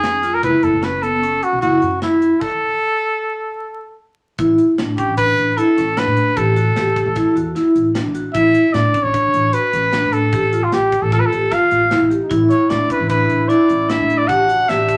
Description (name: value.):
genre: progressive instrumental, band music in an uneven meter.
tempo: 152 BPM.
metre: 5/4.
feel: straight.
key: A mixolydian.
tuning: A4 = 440 Hz.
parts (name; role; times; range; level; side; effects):
clear trumpet; melody; 0.0-15.0 s; E4 to F#5; -20 LUFS; equal; none.
vibraphone with hard mallets; arpeggios; 0.0-15.0 s; B3 to G4; -20 LUFS; equal; none.
upright bass; bass; 0.0-14.9 s; F#1 to A2; -25 LUFS; equal; none.
tight metal drum kit; drums; 0.0-15.0 s; crash cymbal, hi-hat, kick drum, snare drum; -31 LUFS; equal; none.
mellow flugelhorn; second line; 12.2-15.0 s; D4 to E4; -26 LUFS; equal; none.
room: wet club reverb, RT60 0.7 s.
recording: vinyl crackle.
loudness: -16 LUFS.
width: mono.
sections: 0.0-4.4 A section; 4.4-15.0 B section.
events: stop 2.4-4.4.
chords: 0.4 F#m7; 2.4 N.C.; 4.4 Asus24; 6.4 Emadd9/A; 8.4 Aadd11; 10.3 F/A; 12.3 Asus24; 14.3 Em11/A.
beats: 0.04 | 0.43 0.83 1.23 1.62 2.02 | 2.42 2.81 3.21 3.60 4.00 | 4.39 4.79 5.19 5.58 5.98 | 6.37 6.77 7.17 7.56 7.96 | 8.35 8.75 9.14 9.54 9.93 | 10.33 10.73 11.12 11.52 11.91 | 12.31 12.71 13.10 13.50 13.89 | 14.29 14.69.